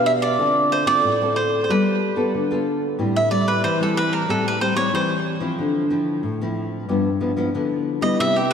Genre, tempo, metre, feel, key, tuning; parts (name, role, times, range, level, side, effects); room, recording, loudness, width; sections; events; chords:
samba; 92 BPM; 4/4; straight; A minor; A4 = 437 Hz
cavaquinho; melody; 0.0-8.5 s; G4 to E5; -21 LUFS; right 2 dB; tape echo
nylon-string guitar; accompaniment; 0.0-8.5 s; G2 to B4; -21 LUFS; left 1 dB; lush chorus
wet lush hall reverb, RT60 3.1 s; dreamy mix soaked in reverb; -18 LUFS; side -7 dB against mid
0.0-3.0 A section; 3.0-8.5 B section
cavaquinho solo 3.0-8.5
0.4 Dm7; 1.7 G9; 3.0 Am7; 5.6 Dm9; 6.9 G6